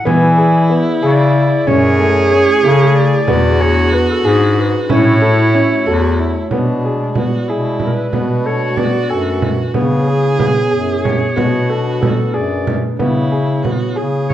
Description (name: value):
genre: contemporary instrumental, chamber music in an uneven meter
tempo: 185 BPM (eighths)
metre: 5/8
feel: straight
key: unclear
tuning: A4 = 439 Hz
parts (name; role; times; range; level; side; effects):
- clear clarinet; melody; 0.0-14.3 s; G#4 to G#5; -19 LUFS; left 1 dB; none
- warm viola; second line; 0.0-14.3 s; D4 to G#4; -18 LUFS; right 2 dB; none
- glass harmonica; sustained chords; 0.1-14.3 s; G#3 to D5; -24 LUFS; equal; none
- warm baby grand piano; arpeggios; 0.1-14.3 s; A3 to G#5; -19 LUFS; left 1 dB; none
- clear bass clarinet; bass; 0.1-14.3 s; E2 to E3; -16 LUFS; left 2 dB; none
- frame drum; percussion; 0.1-14.3 s; none; -20 LUFS; right 3 dB; none
room: moderate recital hall reverb, RT60 1.4 s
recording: dark, warm production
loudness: -11 LUFS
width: side -12 dB against mid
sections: 0.0-6.5 A section; 6.5-14.3 B section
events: none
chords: 0.1 E7; 1.7 F#m9; 3.3 E7; 4.9 A6; 6.5 E7/B; 8.1 Bm7; 9.8 C#m7; 11.4 Bm7; 13.0 C#m7